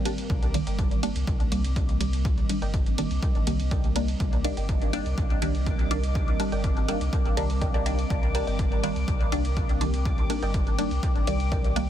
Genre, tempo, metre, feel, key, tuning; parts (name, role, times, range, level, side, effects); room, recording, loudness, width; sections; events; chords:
dub techno; 123 BPM; 4/4; straight; C minor; A4 = 440 Hz
deep dark ambient pad; sustained chords; 0.0-11.9 s; G3 to G5; -34 LUFS; right 3 dB; chorus, built-in reverb, sidechain pumping
bubbling stepped-filter texture; texture; 0.0-11.9 s; Bb4 to D6; -41 LUFS; left 5 dB; chorus, built-in reverb, sidechain pumping
filtered dub chord stab; stabs; 0.1-11.9 s; Eb3 to D4; -30 LUFS; equal; phaser, sidechain pumping, dub echo
punchy analog drum machine; drums; 0.1-11.9 s; hi-hat, ride cymbal; -38 LUFS; right 2 dB
warm sub bass; bass; 0.3-11.9 s; G1 to C2; -28 LUFS; equal; sidechain pumping
electronic kick drum; drums; 0.3-11.6 s; -27 LUFS; equal
warbly dusty pluck; riff; 0.7-11.7 s; Bb4 to G5; -40 LUFS; right 2 dB; chorus, sidechain pumping, dub echo
little or no reverb; dense, heavily limited modern master; -23 LUFS; side -11 dB against mid
0.0-11.9 A section
0.0 Cm7